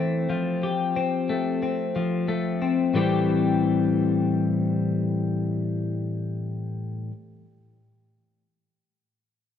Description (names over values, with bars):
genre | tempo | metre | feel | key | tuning
rock | 90 BPM | 4/4 | straight | A minor | A4 = 440 Hz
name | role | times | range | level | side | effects
twelve-string electric guitar | arpeggios | 0.0-7.1 s | A2 to G4 | -23 LUFS | left 3 dB | tape echo
room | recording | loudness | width
moderate plate reverb, RT60 2.3 s | none | -22 LUFS | side -9 dB against mid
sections
0.0-3.0 A section; 3.0-5.6 B section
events
none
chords
0.3 Fadd9; 3.0 Am7